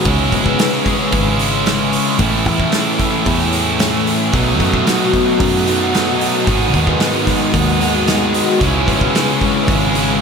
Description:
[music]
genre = rock, shoegaze and dream pop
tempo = 112 BPM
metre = 4/4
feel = straight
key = unclear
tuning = A4 = 440 Hz
[part]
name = picked twelve-string acoustic guitar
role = arpeggios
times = 0.0-10.2 s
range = E3 to G#4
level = -23 LUFS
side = left 4 dB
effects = ensemble chorus, analog delay
[part]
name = overdriven electric guitar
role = riff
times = 0.0-10.2 s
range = G#2 to E4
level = -18 LUFS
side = right 7 dB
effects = reverse reverb
[part]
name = thick fuzz guitar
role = riff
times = 0.0-10.2 s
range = G#2 to C#4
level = -19 LUFS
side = left 7 dB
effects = distortion, lush chorus
[part]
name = picked electric bass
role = bass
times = 0.1-10.2 s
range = G#1 to F#2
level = -20 LUFS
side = equal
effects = none
[part]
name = loose indie drum kit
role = drums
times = 0.1-10.1 s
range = hi-hat, kick drum, snare drum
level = -20 LUFS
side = equal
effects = none
[part]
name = overdriven electric guitar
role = riff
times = 4.3-10.2 s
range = G#2 to E4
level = -22 LUFS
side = equal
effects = lush chorus
[sound]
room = wet huge ambient reverb, RT60 6.4 s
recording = dreamy mix soaked in reverb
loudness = -12 LUFS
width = side -6 dB against mid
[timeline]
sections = 0.0-10.2 A section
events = none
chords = 0.1 C#m7; 2.2 Amaj7; 4.3 B7; 6.5 G#m7; 8.6 C#m7

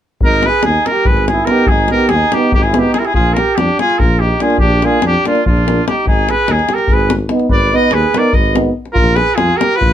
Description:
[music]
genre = balkan folk, Balkan brass band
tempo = 289 BPM (eighths)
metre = 7/8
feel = straight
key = Ab hungarian minor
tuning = A4 = 438 Hz
[part]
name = bright trumpet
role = melody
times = 0.2-9.9 s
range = F4 to Eb5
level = -15 LUFS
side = left 1 dB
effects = none
[part]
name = mellow tuba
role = bass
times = 0.2-9.9 s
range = Ab1 to F2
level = -18 LUFS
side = equal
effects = none
[part]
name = davul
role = percussion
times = 0.2-9.9 s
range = none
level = -16 LUFS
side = left 1 dB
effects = none
[part]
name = mellow flugelhorn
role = second line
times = 0.3-9.9 s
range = D4 to Cb5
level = -19 LUFS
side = right 5 dB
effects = none
[part]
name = warm euphonium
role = accompaniment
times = 1.5-8.7 s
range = D4 to Eb4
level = -20 LUFS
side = left 3 dB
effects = none
[part]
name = warm euphonium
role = accompaniment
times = 1.5-8.7 s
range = Bb3 to Cb4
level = -18 LUFS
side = right 4 dB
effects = none
[sound]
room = moderate small room reverb, RT60 0.5 s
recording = none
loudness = -11 LUFS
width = side -10 dB against mid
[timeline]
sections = 0.2-9.9 A section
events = none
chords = 0.2 Abm; 3.1 Bb; 6.0 Abm; 9.0 Bb5

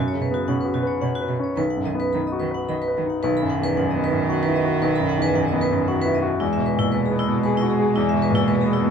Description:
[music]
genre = neoclassical piano and strings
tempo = 114 BPM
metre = 3/4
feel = rubato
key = B major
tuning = A4 = 441 Hz
[part]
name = rich cello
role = second line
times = 0.0-8.9 s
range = B2 to G#3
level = -24 LUFS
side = right 7 dB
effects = none
[part]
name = warm baby grand piano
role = accompaniment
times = 0.0-8.9 s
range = B1 to D#5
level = -22 LUFS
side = left 3 dB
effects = none
[part]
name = vibraphone with hard mallets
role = arpeggios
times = 0.0-8.8 s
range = E4 to B5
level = -27 LUFS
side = right 3 dB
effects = none
[sound]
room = light reverb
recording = band playing live in one room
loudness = -19 LUFS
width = side -7 dB against mid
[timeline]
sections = 0.0-3.2 A section; 3.2-8.9 B section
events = none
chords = 0.0 F#sus4; 1.6 B; 6.4 Eadd9

